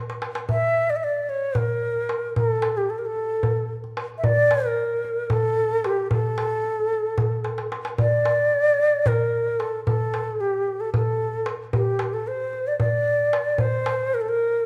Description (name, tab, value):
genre	Turkish makam ensemble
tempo	224 BPM (eighths)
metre	7/8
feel	straight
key	A makam hicaz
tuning	A4 = 440 Hz
part	darbuka	percussion	0.1-14.3 s	none	-28 LUFS	equal	none
part	breathy bright ney	melody	0.5-14.7 s	G4 to E5	-24 LUFS	equal	none
room	moderate recital hall reverb, RT60 1.7 s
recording	none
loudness	-23 LUFS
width	mono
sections	0.0-8.0 A section; 8.0-14.7 B section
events	drum fill 0.0-0.5, 7.5-8.0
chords	none